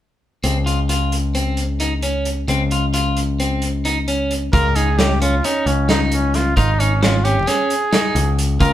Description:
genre	progressive instrumental, band music in an uneven meter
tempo	264 BPM (eighths)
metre	9/8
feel	straight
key	Db lydian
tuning	A4 = 442 Hz
part	electric guitar at the edge of break-up	arpeggios	0.4-8.7 s	C4 to F4	-22 LUFS	equal	none
part	modern bright picked electric bass	bass	0.4-8.7 s	Ab1 to Db2	-18 LUFS	equal	none
part	vintage drum kit	drums	0.4-8.7 s	hi-hat, kick drum, snare drum	-22 LUFS	right 1 dB	none
part	clear trumpet	melody	4.5-8.7 s	Db4 to Bb4	-21 LUFS	right 1 dB	none
room	light reverb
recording	band playing live in one room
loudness	-16 LUFS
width	side -12 dB against mid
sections	0.4-4.5 A section; 4.5-8.7 B section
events	none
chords	0.4 Dbmaj7; 4.5 Db5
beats	| 0.44 0.67 0.89 1.12 1.35 1.58 1.80 2.03 2.26 | 2.48 2.71 2.94 3.17 3.39 3.62 3.85 4.08 4.30 | 4.53 4.76 4.98 5.21 5.44 5.66 5.89 6.12 6.34 | 6.57 6.80 7.02 7.25 7.48 7.70 7.93 8.16 8.38 | 8.61

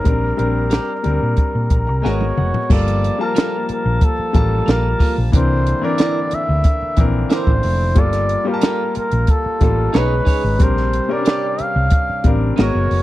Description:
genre	lush 1970s-style soul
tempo	91 BPM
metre	4/4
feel	straight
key	G dorian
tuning	A4 = 440 Hz
part	breathy flugelhorn	melody	0.0-13.0 s	A4 to F5	-22 LUFS	equal	slapback echo
part	clear grand piano	accompaniment	0.0-13.0 s	E3 to Bb5	-23 LUFS	left 4 dB	none
part	hollow-body short-scale fingered electric bass	bass	0.1-13.0 s	F1 to Bb2	-18 LUFS	equal	none
part	compact cocktail drum kit	drums	0.1-13.0 s	crash cymbal, hi-hat, kick drum, snare drum, toms	-16 LUFS	equal	none
part	clean electric guitar	riff	0.7-12.8 s	Bb3 to D5	-27 LUFS	right 7 dB	spring reverb
part	percussive tonewheel organ	sustained chords	2.7-13.0 s	Cb3 to A5	-29 LUFS	right 2 dB	overdrive, wide subtle chorus
room	little or no reverb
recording	dry, close 1970s-style studio recording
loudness	-14 LUFS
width	side -15 dB against mid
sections	0.0-2.7 A section; 2.7-13.0 B section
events	grand piano fill 1.4-2.7; drum fill 2.0-2.7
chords	0.1 Bb69; 2.0 Abm9; 2.7 Gm9; 5.3 C9; 8.0 Gm9; 9.9 B69; 10.6 Bb69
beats	| 0.06 0.72 1.38 2.04 | 2.70 3.36 4.02 4.67 | 5.33 5.99 6.65 7.31 | 7.97 8.63 9.29 9.94 | 10.60 11.26 11.92 12.58

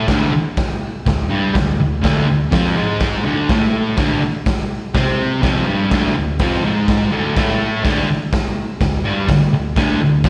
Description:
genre	garage rock duo or trio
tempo	124 BPM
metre	4/4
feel	straight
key	D minor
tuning	A4 = 440 Hz
part	fuzz guitar	riff	0.0-10.3 s	D2 to C4	-19 LUFS	equal	distortion, slapback echo
part	raw garage drum kit	drums	0.1-10.3 s	hi-hat, kick drum, snare drum	-21 LUFS	equal	none
room	light reverb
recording	live gig heard through the venue's PA, recital hall reverb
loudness	-17 LUFS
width	mono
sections	0.0-10.3 A section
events	none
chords	0.0 Dm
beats	| 0.08 0.57 1.06 1.55 | 2.04 2.53 3.01 3.50 | 3.98 4.47 4.95 5.44 | 5.92 6.40 6.88 7.36 | 7.84 8.32 8.81 9.29 | 9.77 10.25

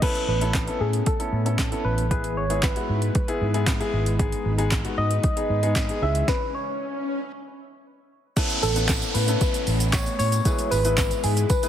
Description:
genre	dance-pop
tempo	115 BPM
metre	4/4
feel	straight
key	unclear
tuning	A4 = 441 Hz
part	soft struck synth lead	melody	0.0-11.7 s	G#4 to E5	-27 LUFS	left 1 dB	chorus, phaser
part	warm baby grand piano	accompaniment	0.0-11.7 s	G#3 to B5	-30 LUFS	left 3 dB	none
part	string machine, cellos	sustained chords	0.0-11.7 s	C#3 to B4	-34 LUFS	equal	ensemble chorus, sidechain pumping
part	smooth R&B drum kit	drums	0.0-11.7 s	crash cymbal, handclaps, hi-hat, kick drum, shaker, snare drum	-25 LUFS	equal	overdrive
part	vintage muted fingered electric bass	bass	0.3-11.4 s	G#1 to A2	-24 LUFS	equal	sidechain pumping
part	swell and downlifter	sound effects	6.4-11.7 s	none	-32 LUFS	equal	none
part	tambourine	percussion	8.4-11.7 s	none	-39 LUFS	right 8 dB	none
room	light reverb, digital ambience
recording	heavily compressed radio sound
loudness	-21 LUFS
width	side -10 dB against mid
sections	0.0-8.4 A section; 8.4-11.7 B section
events	grand piano fill 3.4-4.2; stop 6.3-8.4; swell 6.4-8.4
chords	0.0 Aadd9; 2.1 E/G#; 4.2 G#m; 6.0 C#m; 8.4 Aadd9; 10.5 E/G#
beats	| 0.02 0.54 1.06 1.59 | 2.11 2.63 3.15 3.67 | 4.20 4.72 5.24 5.76 | 6.28 6.80 7.33 7.85 | 8.37 8.89 9.41 9.93 | 10.46 10.98 11.50

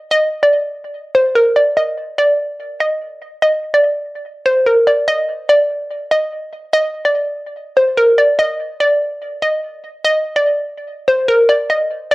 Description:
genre	hip hop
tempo	145 BPM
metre	4/4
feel	half-time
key	unclear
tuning	A4 = 439 Hz
part	hollow square pluck	solo	0.0-12.1 s	Bb4 to Eb5	-13 LUFS	equal	chorus, cassette tape
room	moderate studio reverb, RT60 0.6 s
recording	home recording on cassette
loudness	-13 LUFS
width	side -20 dB against mid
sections	0.0-12.1 A section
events	none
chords	none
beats	| 0.11 0.53 0.94 1.35 | 1.77 2.18 2.60 3.01 | 3.42 3.84 4.25 4.66 | 5.08 5.49 5.91 6.32 | 6.73 7.15 7.56 7.97 | 8.39 8.80 9.22 9.63 | 10.04 10.46 10.87 11.29 | 11.70 12.11

